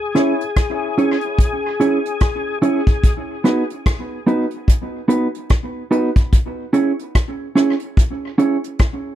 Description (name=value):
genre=dub reggae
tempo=73 BPM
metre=4/4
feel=swing 60% on 16ths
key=C# minor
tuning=A4 = 440 Hz
part: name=overdriven tonewheel organ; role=melody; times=0.0-2.6 s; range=G#4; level=-24 LUFS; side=left 4 dB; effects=chorus vibrato, slow rotary speaker, tape echo
part: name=mellow electric guitar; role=accompaniment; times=0.1-8.6 s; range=B3 to C#5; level=-18 LUFS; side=right 2 dB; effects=tape echo
part: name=soft brush drum kit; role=drums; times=0.2-9.0 s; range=hi-hat, kick drum, rim click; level=-16 LUFS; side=equal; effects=none
room=little or no reverb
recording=dry, close 1970s-style studio recording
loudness=-16 LUFS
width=side -12 dB against mid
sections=0.0-9.2 A section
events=none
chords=0.0 C#m; 3.0 B; 6.3 C#m